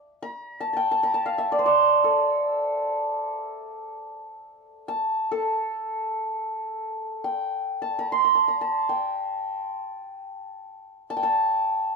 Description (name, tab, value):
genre	Persian modal ensemble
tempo	free time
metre	none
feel	none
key	A dastgah shur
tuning	A4 = 440 Hz
part	santur	solo	0.0-12.0 s	A4 to C6	-23 LUFS	right 1 dB	none
room	wet studio ambience, RT60 0.5 s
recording	heard from further back in the room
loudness	-22 LUFS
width	side -3 dB against mid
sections	0.0-6.9 A section; 6.9-12.0 A section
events	none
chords	none